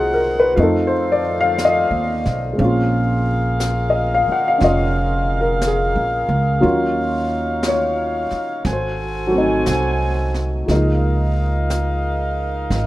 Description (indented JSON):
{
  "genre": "jazz ballad",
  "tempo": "59 BPM",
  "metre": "4/4",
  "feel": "swing 66% on 8ths",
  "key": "unclear",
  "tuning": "A4 = 443 Hz",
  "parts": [
    { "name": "dark upright piano", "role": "accompaniment", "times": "0.0-12.9 s", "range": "F3 to Gb5", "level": "-19 LUFS", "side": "left 2 dB", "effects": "none" },
    { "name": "mellow saxophone section", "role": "sustained chords", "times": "0.0-12.9 s", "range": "Eb4 to Ab5", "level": "-23 LUFS", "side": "equal", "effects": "none" },
    { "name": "upright bass", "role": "bass", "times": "0.0-12.9 s", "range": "F1 to F2", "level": "-21 LUFS", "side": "right 1 dB", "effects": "none" },
    { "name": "jazz brush drum kit", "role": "drums", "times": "0.6-12.9 s", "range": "brushed snare drum, hi-hat, snare drum", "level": "-30 LUFS", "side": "equal", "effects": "none" }
  ],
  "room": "small room reverb",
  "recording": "rough home demo mix",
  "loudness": "-16 LUFS",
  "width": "side -16 dB against mid",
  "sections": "0.0-12.9 A section",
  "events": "none",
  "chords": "0.0 Cm7b5; 0.6 F7; 2.6 Bbm7; 6.6 Ebm9; 8.7 Ab7b9; 10.7 Db69"
}